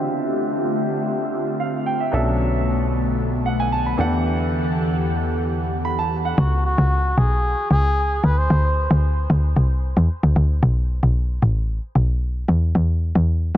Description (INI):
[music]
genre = amapiano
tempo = 113 BPM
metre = 4/4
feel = straight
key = C# phrygian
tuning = A4 = 437 Hz
[part]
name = clear grand piano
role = accompaniment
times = 0.0-6.5 s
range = B2 to B5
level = -25 LUFS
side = right 2 dB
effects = low-pass filter
[part]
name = airy breathy pad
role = sustained chords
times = 0.0-6.4 s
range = D3 to F#5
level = -25 LUFS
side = left 1 dB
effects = chorus, phaser, low-pass filter
[part]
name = plucky analog bass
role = bass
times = 2.1-6.3 s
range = B1 to E2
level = -23 LUFS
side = equal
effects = none
[part]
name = trumpet with cup mute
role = melody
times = 6.4-8.9 s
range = F#4 to B#4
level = -24 LUFS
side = equal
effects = tape echo
[part]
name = woody log drum bass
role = bass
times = 6.4-13.6 s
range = A1 to E2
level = -17 LUFS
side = equal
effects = none
[sound]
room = moderate huge ambient reverb, RT60 5.7 s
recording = dreamy mix soaked in reverb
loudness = -18 LUFS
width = side -12 dB against mid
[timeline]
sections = 0.0-6.4 A section; 6.4-13.6 B section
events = filter sweep 0.0-6.4; drop 6.4-13.6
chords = 0.0 Dm11; 2.1 Bm11; 4.0 Em11; 6.4 C#7sus4; 8.2 N.C.; 10.6 Asus2; 12.5 E5